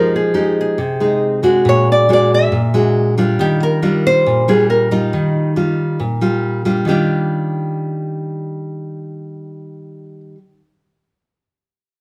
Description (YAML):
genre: bossa nova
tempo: 138 BPM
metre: 4/4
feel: straight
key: Eb major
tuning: A4 = 440 Hz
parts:
  - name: nylon-string guitar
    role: melody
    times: 0.0-10.2 s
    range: Eb4 to Fb5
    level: -19 LUFS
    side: equal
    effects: none
  - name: nylon-string guitar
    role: accompaniment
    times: 0.0-10.4 s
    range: Bb2 to G4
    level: -18 LUFS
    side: equal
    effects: none
room: moderate large studio reverb, RT60 1.1 s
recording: band playing live in one room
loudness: -16 LUFS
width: mono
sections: 0.0-6.9 A section; 6.9-10.3 B section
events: none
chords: 0.0 Fm9; 1.7 Bb7b13; 3.4 Ebmaj9